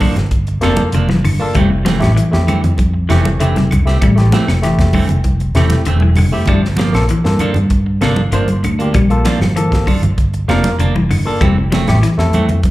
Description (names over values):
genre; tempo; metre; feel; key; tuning
afrobeat; 97 BPM; 4/4; straight; G dorian; A4 = 440 Hz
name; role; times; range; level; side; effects
clean electric guitar; arpeggios; 0.0-12.2 s; C3 to G3; -19 LUFS; left 3 dB; analog delay, slapback echo
clean electric guitar; stabs; 0.0-12.7 s; E3 to D4; -21 LUFS; right 4 dB; slapback echo
tight funk drum kit; drums; 0.0-12.7 s; hi-hat, kick drum, snare drum; -20 LUFS; equal; none
claves; percussion; 0.0-12.5 s; none; -29 LUFS; right 1 dB; none
congas; percussion; 0.0-12.7 s; none; -21 LUFS; right 1 dB; none
fingered electric bass; bass; 0.2-12.7 s; E1 to G2; -14 LUFS; equal; none
barky tine electric piano; accompaniment; 0.6-12.4 s; F3 to C5; -21 LUFS; left 1 dB; overdrive, slapback echo
room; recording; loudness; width
studio ambience; live gig heard through the venue's PA, club reverb; -11 LUFS; side -17 dB against mid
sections
0.0-12.7 A section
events
none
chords
0.0 Gm7; 1.6 Fmaj7; 6.5 Gm7; 11.4 Fmaj7